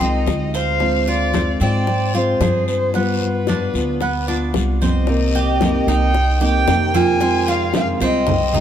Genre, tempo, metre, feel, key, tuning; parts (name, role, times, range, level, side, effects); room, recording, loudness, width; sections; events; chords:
latin, Cuban son and guajira; 112 BPM; 4/4; straight; C minor; A4 = 438 Hz
dark violin; melody; 0.0-8.6 s; B4 to Ab5; -22 LUFS; left 2 dB
fingerpicked steel-string acoustic guitar; accompaniment; 0.0-8.6 s; C3 to G4; -23 LUFS; left 2 dB
Cuban tres; arpeggios; 0.0-8.6 s; B3 to C5; -23 LUFS; right 4 dB
upright bass; bass; 0.0-8.6 s; C2 to Ab2; -21 LUFS; equal
congas; percussion; 0.0-8.6 s; -25 LUFS; left 1 dB
bongos; percussion; 0.3-8.6 s; -29 LUFS; left 8 dB
guiro; percussion; 0.3-8.6 s; -34 LUFS; left 5 dB
nylon-string guitar; second line; 4.8-8.6 s; C4 to F4; -23 LUFS; right 6 dB
moderate plate reverb, RT60 3.0 s; heard from further back in the room; -15 LUFS; side -9 dB against mid
0.0-5.1 A section; 5.1-8.6 B section
0.0 Fm7; 0.8 Dm7b5; 2.9 G7; 5.1 Cm7; 7.2 Fm7